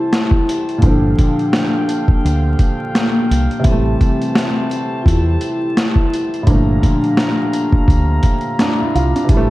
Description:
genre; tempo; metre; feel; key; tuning
lo-fi hip hop; 85 BPM; 4/4; swing 57% on 16ths; unclear; A4 = 440 Hz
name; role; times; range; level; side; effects
vibraphone with soft mallets; melody; 0.0-7.8 s; Bb3 to F4; -20 LUFS; left 2 dB; low-pass filter
warm upright piano; accompaniment; 0.0-9.5 s; A2 to A4; -20 LUFS; right 1 dB; low-pass filter
mellow brass ensemble; sustained chords; 0.0-9.5 s; G4 to Bb5; -26 LUFS; left 1 dB; low-pass filter
boom bap sampler-style drum kit; drums; 0.1-9.5 s; hi-hat, kick drum, snare drum; -15 LUFS; equal; none
deep dub fingered electric bass; bass; 0.8-9.5 s; G1 to E2; -16 LUFS; equal; none
room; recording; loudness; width
little or no reverb; dark, warm production, vinyl crackle; -13 LUFS; side -18 dB against mid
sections
0.0-9.5 A section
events
none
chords
0.0 Am7; 0.8 Gm7; 3.7 Am7; 6.5 Gm7

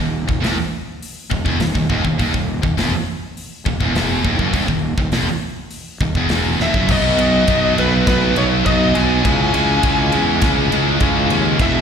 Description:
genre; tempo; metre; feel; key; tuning
heavy metal; 102 BPM; 4/4; straight; unclear; A4 = 443 Hz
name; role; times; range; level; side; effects
high-gain distorted guitar; riff; 0.0-11.8 s; Eb2 to Db4; -21 LUFS; left 12 dB; distortion, slapback echo
scooped high-gain guitar; riff; 0.0-11.8 s; Eb2 to Db4; -21 LUFS; right 10 dB; distortion, slapback echo
fuzz fingered electric bass; bass; 0.0-11.8 s; Eb1 to Fb2; -21 LUFS; equal; overdrive
tight metal drum kit; drums; 0.3-11.7 s; crash cymbal, hi-hat, kick drum, ride cymbal, snare drum; -22 LUFS; equal; none
smooth overdriven lead guitar; melody; 6.6-11.8 s; B4 to Ab5; -20 LUFS; left 1 dB; slapback echo
fuzz guitar; riff; 6.9-11.8 s; E2 to Ab4; -23 LUFS; right 1 dB; distortion, slapback echo
room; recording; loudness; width
studio reverb; live gig heard through the venue's PA, recital hall reverb; -14 LUFS; side -7 dB against mid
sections
0.0-6.9 A section; 6.9-11.8 B section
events
drum fill 6.6; half time 6.9-11.8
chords
0.0 N.C.; 6.9 B; 9.3 Dbm

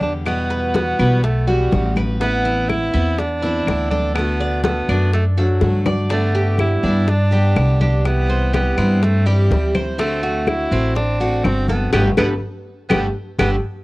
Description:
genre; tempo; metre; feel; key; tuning
latin, Cuban son and guajira; 124 BPM; 4/4; straight; G major; A4 = 440 Hz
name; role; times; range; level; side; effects
clear tenor saxophone; melody; 0.0-13.5 s; F#3 to E4; -22 LUFS; right 2 dB; cassette tape, plate reverb
picked steel-string acoustic guitar; accompaniment; 0.0-13.6 s; B2 to G4; -25 LUFS; left 1 dB; cassette tape
upright bass; bass; 0.0-13.6 s; G1 to G2; -18 LUFS; equal; none
bongos; percussion; 0.0-13.5 s; none; -24 LUFS; left 4 dB; none
congas; percussion; 0.0-13.5 s; none; -27 LUFS; left 2 dB; none
claves; percussion; 0.3-13.5 s; none; -28 LUFS; left 3 dB; none
Cuban tres; arpeggios; 0.5-13.5 s; B3 to D5; -25 LUFS; right 2 dB; cassette tape
room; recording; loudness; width
moderate studio ambience, RT60 0.5 s; home recording on cassette; -15 LUFS; side -20 dB against mid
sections
0.0-13.8 A section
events
drum fill 5.6-6.1, 13.4-13.8; band accent 11.9-13.8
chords
0.3 Emadd9; 2.2 Amadd9; 4.2 D; 6.1 Gadd9; 8.0 C; 10.0 D7; 11.9 Gadd9

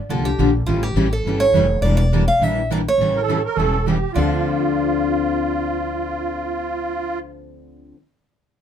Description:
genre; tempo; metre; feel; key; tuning
acoustic string swing (jazz manouche); 208 BPM; 4/4; swing 56% on 8ths; D minor; A4 = 436 Hz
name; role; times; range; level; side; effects
picked steel-string acoustic guitar; melody; 0.1-7.9 s; F4 to F5; -22 LUFS; right 2 dB; none
picked steel-string acoustic guitar; accompaniment; 0.1-8.0 s; C#3 to A4; -24 LUFS; left 9 dB; none
picked steel-string acoustic guitar; accompaniment; 0.1-8.0 s; D3 to Bb4; -25 LUFS; right 4 dB; none
upright bass; bass; 0.1-7.9 s; E1 to D2; -23 LUFS; equal; none
musette accordion; second line; 3.2-7.2 s; F4 to Bb4; -23 LUFS; right 4 dB; none
room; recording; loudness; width
light reverb; minimal, uncompressed stereo recording; -17 LUFS; side -9 dB against mid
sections
0.0-4.1 A section; 4.1-6.4 B section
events
none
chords
0.0 Gm7; 0.7 A7; 1.8 Em7b5; 3.0 A7; 4.1 Dm7

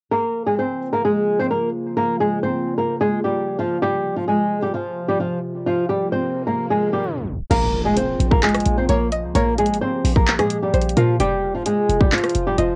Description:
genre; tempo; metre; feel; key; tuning
hip hop, trap; 130 BPM; 4/4; half-time; Bb dorian; A4 = 440 Hz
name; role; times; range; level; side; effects
flamenco guitar; melody; 0.1-12.8 s; F3 to C5; -22 LUFS; equal; low-pass filter, cassette tape
warbly tape-like pad; sustained chords; 0.6-12.8 s; C3 to G4; -31 LUFS; equal; chorus, built-in reverb
swell and impact; sound effects; 6.1-9.4 s; none; -35 LUFS; equal; none
string-like resonator pluck; second line; 7.5-12.8 s; Bb4 to G5; -29 LUFS; equal; chorus, analog delay
short 808-style bass; bass; 7.5-12.8 s; F1 to Bb2; -24 LUFS; equal; tube saturation
trap drum kit; drums; 7.5-12.7 s; crash cymbal, handclaps, hi-hat, kick drum, rim click; -22 LUFS; equal; overdrive, vintage 12-bit sampler grit, cassette tape
room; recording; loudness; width
light reverb; home recording on cassette, tape stop; -20 LUFS; mono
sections
0.1-7.5 A section; 7.5-12.8 B section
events
swell 6.1-7.5; tape stop 7.0-7.5; impact 7.5-9.4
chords
0.1 Bbm7; 3.8 Fsus2; 7.5 Bbm7; 11.2 Fsus2

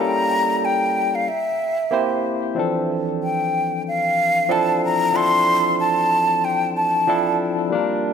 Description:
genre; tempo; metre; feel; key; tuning
chillout; 93 BPM; 4/4; swing 56% on 16ths; D minor; A4 = 440 Hz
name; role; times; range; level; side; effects
breathy concert flute; melody; 0.0-7.4 s; E5 to C6; -19 LUFS; left 1 dB; ping-pong delay
barky tine electric piano; accompaniment; 0.0-8.1 s; E3 to C5; -22 LUFS; moving between left 4 dB and right 5 dB; auto-pan, ping-pong delay
room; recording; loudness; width
moderate lush hall reverb, RT60 2.8 s; none; -17 LUFS; side -7 dB against mid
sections
0.0-2.6 A section; 2.6-8.1 B section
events
none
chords
0.0 A7b9; 1.3 C7; 2.6 Dm9

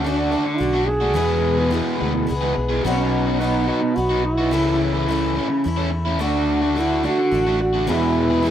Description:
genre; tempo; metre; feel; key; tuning
rock; 107 BPM; 3/4; straight; E mixolydian; A4 = 440 Hz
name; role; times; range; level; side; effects
mellow duduk; melody; 0.0-8.5 s; C#4 to G#4; -22 LUFS; right 2 dB; analog delay
picked twelve-string acoustic guitar; accompaniment; 0.0-8.5 s; E2 to C#5; -26 LUFS; left 3 dB; none
crunchy overdriven guitar; riff; 0.0-8.5 s; E2 to G#4; -22 LUFS; equal; none
fingered electric bass; bass; 0.0-8.5 s; A1 to E2; -24 LUFS; equal; none
room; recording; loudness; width
light reverb, small room ambience; rough home demo mix; -18 LUFS; side -10 dB against mid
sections
0.0-8.5 A section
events
none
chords
0.0 D; 1.2 E; 2.8 Badd9; 4.5 A/C#; 6.2 D; 7.9 E

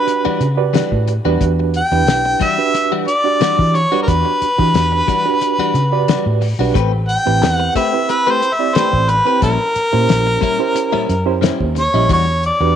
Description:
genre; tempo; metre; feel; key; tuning
straight-eighth soul blues; 90 BPM; 4/4; swing 54% on 16ths; unclear; A4 = 437 Hz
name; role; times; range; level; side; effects
clear harmonica; melody; 0.0-12.8 s; A#4 to G5; -16 LUFS; equal; overdrive
bright reed electric piano; accompaniment; 0.0-12.8 s; C4 to D#5; -20 LUFS; right 13 dB; fast tremolo
direct-recorded clean electric guitar; stabs; 0.1-12.6 s; A#2 to B4; -23 LUFS; left 11 dB; none
cloth-damped thuddy drum kit; drums; 0.1-12.6 s; hi-hat, kick drum, snare drum; -19 LUFS; left 4 dB; none
vintage muted fingered electric bass; bass; 0.3-12.8 s; A1 to E3; -18 LUFS; equal; none
room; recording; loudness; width
moderate spring reverb, RT60 1.9 s, small room ambience; 1960s-style stereo with parts hard left and right; -13 LUFS; side -9 dB against mid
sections
0.0-12.8 A section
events
none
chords
0.0 Em9; 6.8 Am9; 9.4 A#dim7; 12.1 Em9

